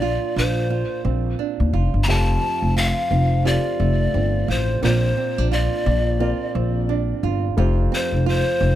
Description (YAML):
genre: acoustic pop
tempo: 87 BPM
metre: 4/4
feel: swing 60% on 16ths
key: Bb major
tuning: A4 = 440 Hz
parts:
  - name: breathy pan flute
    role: melody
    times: 0.0-8.8 s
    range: C5 to Bb5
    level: -24 LUFS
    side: left 3 dB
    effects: tape echo
  - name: nylon-string guitar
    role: accompaniment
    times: 0.0-8.8 s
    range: F2 to F4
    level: -26 LUFS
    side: right 12 dB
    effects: none
  - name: upright bass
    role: bass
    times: 0.0-8.8 s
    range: F1 to Eb2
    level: -20 LUFS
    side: left 1 dB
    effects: none
  - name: dark upright piano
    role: accompaniment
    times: 2.1-8.8 s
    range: A3 to F5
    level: -31 LUFS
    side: left 5 dB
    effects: none
room: little or no reverb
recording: dry, close 1970s-style studio recording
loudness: -18 LUFS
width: side -12 dB against mid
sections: 0.0-8.8 A section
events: none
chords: 0.0 Bbadd9; 2.1 Fadd9; 4.8 Bbadd9; 7.6 Fadd9